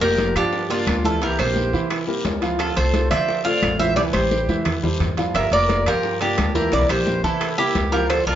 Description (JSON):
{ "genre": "latin, Cuban son and guajira", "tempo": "174 BPM", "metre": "4/4", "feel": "straight", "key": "unclear", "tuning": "A4 = 441 Hz", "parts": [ { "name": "Cuban tres", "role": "melody", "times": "0.0-8.4 s", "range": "F4 to F5", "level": "-22 LUFS", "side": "right 1 dB", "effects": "plate reverb" }, { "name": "breathy bright jazz flute", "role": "second line", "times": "0.0-8.4 s", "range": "D4 to D5", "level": "-28 LUFS", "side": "right 1 dB", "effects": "none" }, { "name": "flamenco guitar", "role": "accompaniment", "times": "0.0-8.4 s", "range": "C3 to G4", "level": "-30 LUFS", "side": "left 6 dB", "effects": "none" }, { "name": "warm concert grand piano", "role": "arpeggios", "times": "0.0-8.4 s", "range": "E3 to A5", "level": "-26 LUFS", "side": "right 4 dB", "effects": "none" }, { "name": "upright bass", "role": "bass", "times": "0.0-8.4 s", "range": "F1 to D3", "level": "-25 LUFS", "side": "equal", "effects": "none" }, { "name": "congas", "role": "percussion", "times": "0.0-8.4 s", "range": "none", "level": "-27 LUFS", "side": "left 1 dB", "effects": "none" }, { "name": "timbales", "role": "percussion", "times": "0.0-8.4 s", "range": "none", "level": "-31 LUFS", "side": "right 5 dB", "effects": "none" }, { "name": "bongos", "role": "percussion", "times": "0.2-8.3 s", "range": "none", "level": "-33 LUFS", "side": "left 4 dB", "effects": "none" }, { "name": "guiro", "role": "percussion", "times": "0.2-8.4 s", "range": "none", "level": "-36 LUFS", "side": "left 3 dB", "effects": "none" }, { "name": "claves", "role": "percussion", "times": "0.4-8.3 s", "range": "none", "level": "-34 LUFS", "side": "left 2 dB", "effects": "none" } ], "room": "wet studio reverb, RT60 0.7 s", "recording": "heard from further back in the room, nothing above 7.5 kHz", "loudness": "-18 LUFS", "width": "side -11 dB against mid", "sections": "0.0-8.4 A section", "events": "drum fill 4.0-5.3", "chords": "0.0 Gm7; 1.2 C7; 2.6 Dm7; 4.0 Cadd9; 5.3 Gm7; 6.7 C7" }